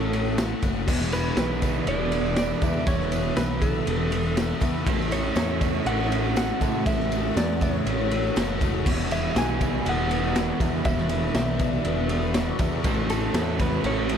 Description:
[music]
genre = rock, shoegaze and dream pop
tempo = 120 BPM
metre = 4/4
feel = straight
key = unclear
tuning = A4 = 440 Hz
[part]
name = direct-recorded clean electric guitar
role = melody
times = 0.0-14.2 s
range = A4 to G#5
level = -31 LUFS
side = equal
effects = analog delay
[part]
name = shimmering ambient pad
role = sustained chords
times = 0.0-14.2 s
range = F#4 to F#6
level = -37 LUFS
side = right 1 dB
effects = chorus, built-in reverb
[part]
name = picked twelve-string acoustic guitar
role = arpeggios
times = 0.0-14.2 s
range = F#3 to E4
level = -36 LUFS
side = left 4 dB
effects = lush chorus, analog delay
[part]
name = overdriven electric guitar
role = riff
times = 0.0-14.2 s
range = E3 to D5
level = -30 LUFS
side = right 13 dB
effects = reverse reverb
[part]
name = thick fuzz guitar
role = riff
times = 0.0-14.2 s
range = E2 to A3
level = -30 LUFS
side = left 12 dB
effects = distortion, ensemble chorus
[part]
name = growling picked electric bass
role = bass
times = 0.0-14.2 s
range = E1 to A2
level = -29 LUFS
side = equal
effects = overdrive
[part]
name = tambourine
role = percussion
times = 0.0-14.2 s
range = none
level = -47 LUFS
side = right 11 dB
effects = none
[part]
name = raw garage drum kit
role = drums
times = 0.1-14.2 s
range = crash cymbal, kick drum, ride cymbal, snare drum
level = -26 LUFS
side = equal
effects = none
[sound]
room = small room ambience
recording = none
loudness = -22 LUFS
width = side -8 dB against mid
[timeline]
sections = 0.9-14.2 A section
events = none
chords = 0.0 A6; 0.9 E7sus4; 4.9 A6; 8.9 E5; 12.8 A6

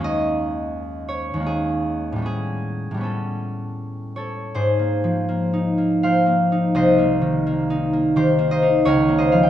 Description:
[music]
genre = classical, solo harp piece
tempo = 76-88 BPM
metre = 3/4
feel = rubato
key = Ab major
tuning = A4 = 440 Hz
[part]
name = concert harp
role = solo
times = 0.0-9.5 s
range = C2 to G5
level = -18 LUFS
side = equal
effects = none
[sound]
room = moderate recital hall reverb, RT60 1.5 s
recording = nothing above 10.3 kHz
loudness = -18 LUFS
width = side -11 dB against mid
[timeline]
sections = 0.0-4.5 A section; 4.5-9.5 B section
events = none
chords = 0.0 Eb7sus4; 2.2 A9; 4.5 Ab69; 6.8 Cm7; 8.8 Db69

